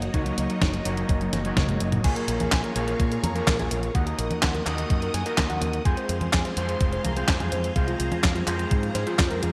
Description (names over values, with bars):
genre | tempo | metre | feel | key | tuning
italo disco | 126 BPM | 4/4 | straight | Bb minor | A4 = 439 Hz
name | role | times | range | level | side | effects
soft octave-layered synth lead | melody | 0.0-9.5 s | Gb3 to Bb5 | -34 LUFS | equal | chorus, phaser, digital delay
string machine, full ensemble | sustained chords | 0.0-9.5 s | Bb3 to Eb6 | -37 LUFS | equal | phaser, ensemble chorus
electric guitar at the edge of break-up | stabs | 0.0-9.5 s | Ab3 to Eb5 | -33 LUFS | equal | none
picked electric bass with an envelope filter | bass | 0.0-9.5 s | F1 to Bb2 | -32 LUFS | equal | none
clean 12-bit digital drum machine | drums | 0.0-9.5 s | congas, crash cymbal, handclaps, hi-hat, snare drum, toms | -30 LUFS | equal | gated reverb
electronic kick drum | drums | 0.1-9.3 s | none | -27 LUFS | equal | none
room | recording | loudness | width
light reverb, digital ambience | bright 1980s-style digital production | -25 LUFS | mono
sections
0.0-2.0 A section; 2.0-9.5 B section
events
drum fill 1.3-2.0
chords
0.0 Gb6; 2.0 Bbm7; 4.0 Ebm; 5.9 Fm